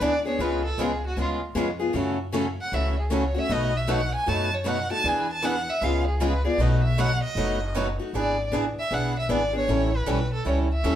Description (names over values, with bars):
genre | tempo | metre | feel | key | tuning
acoustic string swing (jazz manouche) | 155 BPM | 4/4 | swing 63% on 8ths | E mixolydian | A4 = 440 Hz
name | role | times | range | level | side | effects
warm violin | melody | 0.0-11.0 s | E#4 to A5 | -28 LUFS | equal | none
picked steel-string acoustic guitar | accompaniment | 0.0-11.0 s | B2 to A4 | -28 LUFS | left 3 dB | none
picked swing-style acoustic guitar | accompaniment | 0.0-11.0 s | B2 to B4 | -31 LUFS | right 4 dB | none
upright bass | bass | 0.0-11.0 s | F#1 to F#2 | -27 LUFS | equal | none
room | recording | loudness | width
wet studio reverb, RT60 0.8 s | band playing live in one room | -22 LUFS | side -10 dB against mid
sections
0.0-8.1 A section; 8.1-11.0 B section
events
violin solo 0.0-8.1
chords
0.4 C#7; 2.0 F#m7; 3.5 B7; 5.0 E7; 5.8 C#7; 6.6 B7; 8.1 E7; 9.7 A7